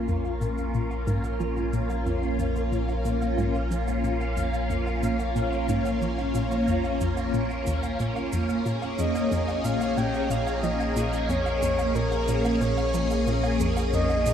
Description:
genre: ambient, sequencer-driven space music.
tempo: 91 BPM.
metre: 4/4.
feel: straight.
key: Bb minor.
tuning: A4 = 436 Hz.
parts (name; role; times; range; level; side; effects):
phased string machine; sustained chords; 0.0-14.3 s; Bb3 to Ab4; -27 LUFS; left 1 dB; ensemble chorus, phaser, shimmer reverb.
warm sub bass; bass; 0.0-14.3 s; Bb1; -30 LUFS; equal; none.
hollow square pluck; riff; 0.1-14.3 s; Eb2 to F3; -30 LUFS; equal; chorus, phaser, cassette tape, ping-pong delay.
cabasa and woodblock; percussion; 0.1-14.3 s; none; -41 LUFS; right 4 dB; ping-pong delay.
breathy flute-like synth lead; melody; 9.0-14.3 s; Bb4 to G5; -29 LUFS; equal; chorus, cassette tape, shimmer reverb, ping-pong delay.
room: wet huge ambient reverb, RT60 8.0 s.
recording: none.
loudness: -24 LUFS.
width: side -8 dB against mid.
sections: 0.0-14.3 A section.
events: fade-in on drum 0.0-14.3; filter sweep on synth arpeggio sound 0.0-14.3.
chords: 0.0 Bbm7.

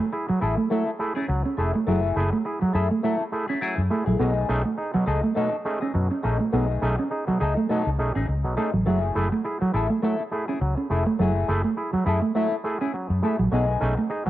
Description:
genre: funk.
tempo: 103 BPM.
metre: 4/4.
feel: swing 56% on 16ths.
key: F# dorian.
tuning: A4 = 440 Hz.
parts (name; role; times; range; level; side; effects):
semi-hollow electric guitar; accompaniment; 0.0-14.3 s; A3 to A4; -28 LUFS; left 4 dB; wah, wide subtle chorus, cassette tape.
mellow electric guitar; riff; 0.0-14.3 s; F#3 to C#4; -26 LUFS; right 3 dB; cassette tape.
overdriven clav; stabs; 0.0-14.3 s; B2 to G#4; -28 LUFS; right 1 dB; auto-wah, cassette tape, analog delay.
vintage muted fingered electric bass; bass; 0.3-14.3 s; E#1 to F#2; -25 LUFS; equal; none.
room: light reverb, digital ambience.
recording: home recording on cassette.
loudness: -22 LUFS.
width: side -14 dB against mid.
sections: 0.0-14.3 A section.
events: none.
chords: 0.0 F#m9; 4.2 B13; 8.9 F#m9; 13.5 B13.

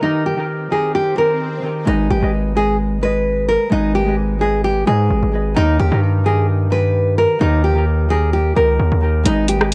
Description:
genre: hip hop, trap.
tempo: 130 BPM.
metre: 4/4.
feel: half-time.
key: G# harmonic minor.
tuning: A4 = 440 Hz.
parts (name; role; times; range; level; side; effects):
nylon-string guitar; melody; 0.0-9.7 s; D#4 to B4; -20 LUFS; equal; low-pass filter, cassette tape.
Celtic harp; accompaniment; 0.0-9.7 s; D#3 to D#5; -24 LUFS; equal; low-pass filter.
swell; sound effects; 0.6-1.9 s; none; -34 LUFS; equal; none.
distorted 808-style bass; bass; 1.9-9.7 s; G#1 to G#2; -20 LUFS; equal; distortion.
trap drum kit; drums; 9.3-9.7 s; hi-hat, rim click; -20 LUFS; equal; vintage 12-bit sampler grit, cassette tape.
room: little or no reverb.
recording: home recording on cassette.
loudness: -17 LUFS.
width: mono.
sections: 0.0-1.9 A section; 1.9-9.7 B section.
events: swell 0.6-1.9.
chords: 0.0 D#; 1.9 G#m; 5.6 D#.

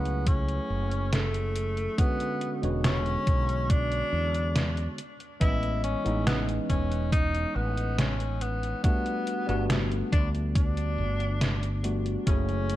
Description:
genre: vaporwave.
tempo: 70 BPM.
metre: 4/4.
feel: straight.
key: unclear.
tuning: A4 = 439 Hz.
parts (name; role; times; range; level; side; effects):
clear tenor saxophone; melody; 0.0-12.8 s; A3 to E4; -32 LUFS; left 1 dB; tape echo.
tine electric piano; accompaniment; 0.0-12.8 s; D3 to D#5; -32 LUFS; equal; wide subtle chorus.
mellow fretless electric bass; bass; 0.0-12.8 s; E1 to E2; -29 LUFS; equal; none.
detuned 8-bit digital drum machine; drums; 0.1-12.8 s; hi-hat, snare drum; -30 LUFS; equal; gated reverb.
electronic kick drum; drums; 0.3-12.4 s; none; -25 LUFS; equal; none.
warbly tape-like pad; sustained chords; 12.3-12.8 s; none; barely audible; none; none.
room: light reverb.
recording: cassette tape.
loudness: -25 LUFS.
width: side -14 dB against mid.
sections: 0.0-12.8 A section.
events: none.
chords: 0.0 F#m9; 2.0 E13; 5.0 Amaj9#11; 8.8 Gmaj9.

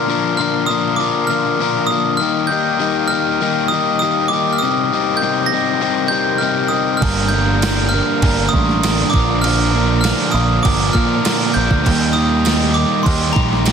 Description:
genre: indie rock.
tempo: 100 BPM.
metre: 4/4.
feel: straight.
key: unclear.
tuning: A4 = 440 Hz.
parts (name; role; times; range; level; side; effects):
glockenspiel with brass mallets; melody; 0.0-13.7 s; Bb5 to Bb6; -19 LUFS; right 2 dB; slapback echo.
warm analog pad; sustained chords; 0.0-13.7 s; D4 to Eb6; -28 LUFS; right 6 dB; chorus.
overdriven electric guitar; riff; 0.0-13.7 s; G2 to Bb4; -19 LUFS; left 12 dB; none.
overdriven semi-hollow guitar; riff; 7.0-13.7 s; G2 to Bb4; -20 LUFS; right 13 dB; lush chorus, slapback echo.
growling picked electric bass; bass; 7.0-13.7 s; G1 to Bb2; -18 LUFS; right 1 dB; overdrive.
gated 80s digital drum machine; drums; 7.0-13.7 s; crash cymbal, kick drum, snare drum; -19 LUFS; right 2 dB; gated reverb, gated reverb snare, overdrive.
tambourine; percussion; 7.6-13.7 s; none; -27 LUFS; right 18 dB; none.
room: light reverb.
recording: dense, heavily limited modern master.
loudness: -14 LUFS.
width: side -7 dB against mid.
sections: 0.0-13.7 A section.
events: none.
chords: 0.0 Bbadd9; 2.2 Eb; 4.6 Cm7; 7.0 Gm7; 9.1 Bbadd9; 11.9 Eb.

